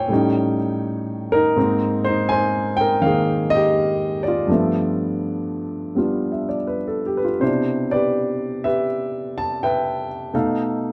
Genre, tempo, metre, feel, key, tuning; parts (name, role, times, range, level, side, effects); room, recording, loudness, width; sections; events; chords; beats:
solo jazz; 82 BPM; 4/4; swing 67% on 8ths; C major from 7.4 s; A4 = 440 Hz
warm grand piano; solo; 0.0-10.9 s; G2 to Bb5; -21 LUFS; equal
light reverb; dark, warm production; -21 LUFS; mono
0.0-7.4 A section; 7.4-10.9 B section
0.1 A7#11; 1.6 Abmaj9; 4.5 G13; 7.4 Cmaj9; 10.3 B7#11
0.10 0.83 | 1.57 2.30 3.03 3.76 | 4.49 5.22 5.96 6.69 | 7.42 8.15 8.88 9.61 | 10.34